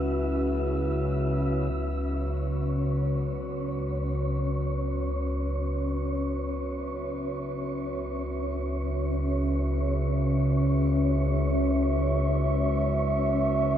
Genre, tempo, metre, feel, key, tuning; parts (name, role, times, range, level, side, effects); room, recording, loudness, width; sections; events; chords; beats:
dark ambient drone; free time; C# minor; A4 = 439 Hz
dark analog pad; sustained chords; 0.0-13.8 s; C#4 to F#5; -32 LUFS; right 1 dB; chorus, shimmer reverb
gamelan-type bronze metallophone; arpeggios; 0.0-3.6 s; barely audible
analog drone; drone; 0.0-13.8 s; C#2 to C#3; -27 LUFS; equal; chorus
wind-like tuned noise texture; texture; 0.0-13.8 s; C#4 to E5; -32 LUFS; left 1 dB; built-in reverb, shimmer reverb
moderate plate reverb, RT60 2.8 s; echo-heavy mix; -25 LUFS; side -10 dB against mid
0.0-1.7 A section; 1.7-13.8 B section
0.0 C#m
free time